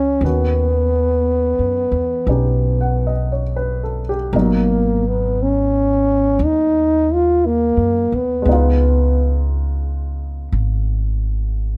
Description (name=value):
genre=jazz ballad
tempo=58 BPM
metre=4/4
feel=swing 67% on 8ths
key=unclear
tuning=A4 = 442 Hz
part: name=mellow trombone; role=melody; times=0.0-9.5 s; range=Bb3 to F4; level=-20 LUFS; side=equal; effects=none
part: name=dark baby grand piano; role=accompaniment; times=0.0-11.8 s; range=Cb3 to F#5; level=-25 LUFS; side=equal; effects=none
part: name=upright bass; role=bass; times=0.0-11.8 s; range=Ab1 to F#2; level=-21 LUFS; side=equal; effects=none
room=little or no reverb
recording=none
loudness=-18 LUFS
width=mono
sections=0.0-11.8 A section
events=none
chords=0.2 Eb7alt; 4.3 Abm9; 8.5 Db9